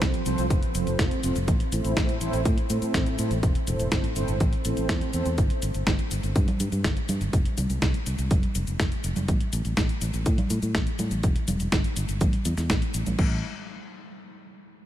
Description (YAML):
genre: italo disco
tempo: 123 BPM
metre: 4/4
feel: straight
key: A minor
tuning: A4 = 442 Hz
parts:
  - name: mellow synth brass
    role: stabs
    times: 0.0-5.3 s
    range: A2 to C5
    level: -30 LUFS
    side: right 1 dB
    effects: chorus, tremolo, ping-pong delay
  - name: fingered electric bass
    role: bass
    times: 0.0-13.4 s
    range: E1 to A2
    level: -28 LUFS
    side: equal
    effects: none
  - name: detuned 8-bit digital drum machine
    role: drums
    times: 0.0-13.3 s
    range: cabasa, congas, crash cymbal, hi-hat, snare drum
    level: -30 LUFS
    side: equal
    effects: none
  - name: electronic kick drum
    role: drums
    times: 0.0-13.3 s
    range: none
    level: -25 LUFS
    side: equal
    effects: none
room: light reverb, digital ambience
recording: none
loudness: -23 LUFS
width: side -12 dB against mid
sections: 0.0-13.2 A section; 13.2-14.9 B section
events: none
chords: 0.0 F; 1.5 Am; 5.4 N.C.; 7.3 F5; 9.3 A5; 13.2 N.C.